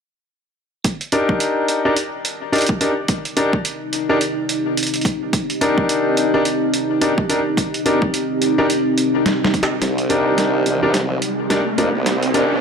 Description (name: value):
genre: glitch hop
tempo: 107 BPM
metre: 4/4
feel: swing 59% on 16ths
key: C minor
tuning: A4 = 441 Hz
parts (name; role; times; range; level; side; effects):
- boom bap sampler-style drum kit; drums; 0.8-12.5 s; hi-hat, snare drum; -22 LUFS; right 2 dB; high-pass filter on hats, studio ambience, high-pass filter on snare
- electronic kick drum; drums; 0.8-9.7 s; none; -20 LUFS; right 1 dB; overdrive, high-pass filter on kick, studio ambience, high-pass filter on room
- deep dark ambient pad; texture; 3.3-12.6 s; C4 to G4; -21 LUFS; equal; chorus, built-in reverb, sidechain pumping
- bright concert grand piano; stabs; 1.1-12.5 s; D4 to Bb4; -19 LUFS; left 1 dB; vintage 12-bit sampler grit, sidechain pumping, low-pass filter, ping-pong delay
- formant-sweep wobble bass; bass; 9.8-12.6 s; Bb1 to F2; -22 LUFS; right 1 dB; chorus, tube saturation, high-pass filter
- riser; sound effects; 10.5-12.6 s; none; -24 LUFS; right 3 dB; none
room: moderate lush hall reverb, RT60 2.5 s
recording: dark, warm production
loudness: -16 LUFS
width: side -6 dB against mid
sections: 0.8-9.8 A section; 9.8-12.6 B section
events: drum fill 9.3-9.8, 9.8-12.6; build-up 9.8-12.6; riser 10.5-12.6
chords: 0.8 Cm9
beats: | 0.85 1.41 1.97 2.53 | 3.09 3.65 4.21 4.77 | 5.33 5.89 6.45 7.01 | 7.58 8.14 8.70 9.26 | 9.82 10.38 10.94 11.50 | 12.06